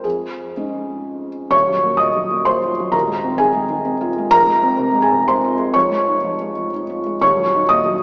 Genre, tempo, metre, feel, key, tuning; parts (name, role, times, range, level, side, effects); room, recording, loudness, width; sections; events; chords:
neoclassical minimalist piano; 120-133 BPM; 3/4; rubato; Eb dorian; A4 = 440 Hz
felt-muted upright piano; solo; 0.0-8.0 s; Eb1 to Eb6; -18 LUFS; equal
wet concert hall reverb, RT60 2.6 s; recorded in a church or concert hall, small speaker sound; -17 LUFS; mono
0.0-1.5 A section; 1.5-8.0 B section
0.0 Dbadd9/F; 1.5 Ebmadd9; 2.9 Ab6/Eb; 4.3 Fm; 5.7 Dbadd9/F; 7.2 Ebm